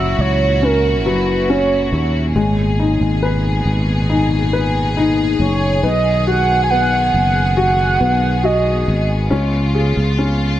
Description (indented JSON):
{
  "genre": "pop ballad",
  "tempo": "69 BPM",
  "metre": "4/4",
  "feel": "straight",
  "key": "G# minor",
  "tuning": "A4 = 441 Hz",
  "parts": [
    { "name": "mellow horn-like synth lead", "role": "melody", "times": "0.0-9.1 s", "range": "A#4 to G#5", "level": "-18 LUFS", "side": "right 4 dB", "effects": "chorus" },
    { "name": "warm upright piano", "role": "accompaniment", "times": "0.0-10.6 s", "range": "F#3 to B4", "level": "-20 LUFS", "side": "left 3 dB", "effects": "none" },
    { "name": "rich studio string section", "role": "sustained chords", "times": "0.0-10.6 s", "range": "A#2 to G#4", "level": "-22 LUFS", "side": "left 1 dB", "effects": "none" },
    { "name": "sustaining fretless electric bass", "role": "bass", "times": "0.0-10.6 s", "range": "F#1 to D#2", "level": "-18 LUFS", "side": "equal", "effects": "none" }
  ],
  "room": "light reverb, small room ambience",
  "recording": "none",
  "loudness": "-14 LUFS",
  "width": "side -12 dB against mid",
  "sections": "0.0-10.6 A section",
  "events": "none",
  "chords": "0.0 F#7; 2.4 G#madd9; 5.8 B6; 9.3 C#7"
}